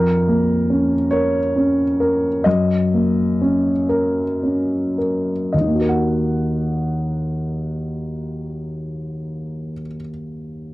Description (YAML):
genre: classical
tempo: 35-50 BPM (dotted quarters)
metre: 6/8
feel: rubato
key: Eb minor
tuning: A4 = 440 Hz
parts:
  - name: dark grand piano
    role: accompaniment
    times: 0.0-10.7 s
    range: Eb2 to Gb5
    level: -18 LUFS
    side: equal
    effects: none
room: light reverb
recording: dry, close 1970s-style studio recording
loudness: -17 LUFS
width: side -18 dB against mid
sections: 0.0-5.5 A section; 5.5-8.8 B section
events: slowing down 0.0-5.5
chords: 0.0 Bbm/F; 2.5 Gb; 5.5 Ebm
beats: 1.11 | 2.45 3.90 | 5.52 7.15